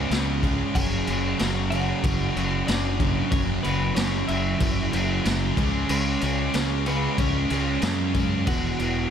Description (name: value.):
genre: quiet-loud alternative rock.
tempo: 93 BPM.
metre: 4/4.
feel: straight.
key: unclear.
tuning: A4 = 439 Hz.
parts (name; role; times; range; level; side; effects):
twelve-string electric guitar; melody; 0.0-9.1 s; B3 to G#5; -32 LUFS; equal; harmonic tremolo, slapback echo.
fuzz guitar; riff; 0.0-9.1 s; E2 to C#4; -30 LUFS; left 14 dB; distortion.
thick fuzz guitar; riff; 0.0-9.1 s; E2 to C#4; -28 LUFS; right 17 dB; distortion.
growling fingered electric bass; bass; 0.0-9.1 s; E1 to F#2; -27 LUFS; left 1 dB; overdrive.
raw garage drum kit; drums; 0.1-8.9 s; crash cymbal, kick drum, snare drum; -26 LUFS; left 1 dB; none.
room: light reverb.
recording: none.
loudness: -21 LUFS.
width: side -8 dB against mid.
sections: 0.0-9.1 A section.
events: none.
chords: 0.0 C#5; 0.7 F#sus2; 5.6 C#5; 8.5 Esus2.